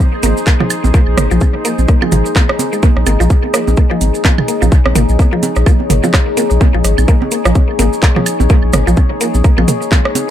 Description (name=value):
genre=minimal techno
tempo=127 BPM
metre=4/4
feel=swing 58% on 16ths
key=Bb minor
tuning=A4 = 440 Hz
part: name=electronic kick drum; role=drums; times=0.0-10.0 s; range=none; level=-10 LUFS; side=equal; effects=none
part: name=maracas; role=percussion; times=0.0-10.3 s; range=none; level=-26 LUFS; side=right 3 dB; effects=none
part: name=organic electronic drum kit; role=percussion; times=0.0-10.3 s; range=congas, rim click, toms, woodblock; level=-18 LUFS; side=right 4 dB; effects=dub echo
part: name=deep dark ambient pad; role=texture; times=0.0-10.3 s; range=Eb4 to Db5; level=-19 LUFS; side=left 3 dB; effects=chorus, built-in reverb, sidechain pumping
part: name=mallet-like synth pluck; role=riff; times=0.2-10.0 s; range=F3 to Bb3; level=-19 LUFS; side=equal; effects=chorus, sidechain pumping, dub echo
part: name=saturated sub bass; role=bass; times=0.2-9.7 s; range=Ab1 to Bb1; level=-13 LUFS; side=equal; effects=sidechain pumping
part: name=booming analog drum machine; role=drums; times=0.2-10.3 s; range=handclaps, hi-hat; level=-20 LUFS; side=right 1 dB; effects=overdrive, dub echo
room=light reverb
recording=echo-heavy mix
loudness=-10 LUFS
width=side -11 dB against mid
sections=0.0-10.3 A section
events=none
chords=0.0 Bbm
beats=0.47 | 0.94 1.41 1.89 2.36 | 2.83 3.30 3.77 4.25 | 4.72 5.19 5.66 6.14 | 6.61 7.08 7.55 8.03 | 8.50 8.97 9.44 9.92